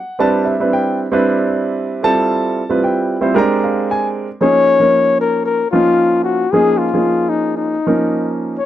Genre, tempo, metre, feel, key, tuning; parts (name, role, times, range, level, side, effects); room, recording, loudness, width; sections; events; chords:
jazz; 114 BPM; 4/4; straight; A4 = 440 Hz
warm grand piano; accompaniment; 0.0-8.6 s; F3 to A#5; -15 LUFS; right 2 dB
trumpet with bucket mute; melody; 4.4-8.7 s; Eb4 to Db5; -14 LUFS; left 4 dB
light reverb; dry, close 1970s-style studio recording; -13 LUFS; side -12 dB against mid
0.0-4.4 A section; 4.4-8.7 B section
0.2 D13sus4; 2.0 G13sus4; 3.4 A#13; 4.4 Eb9sus4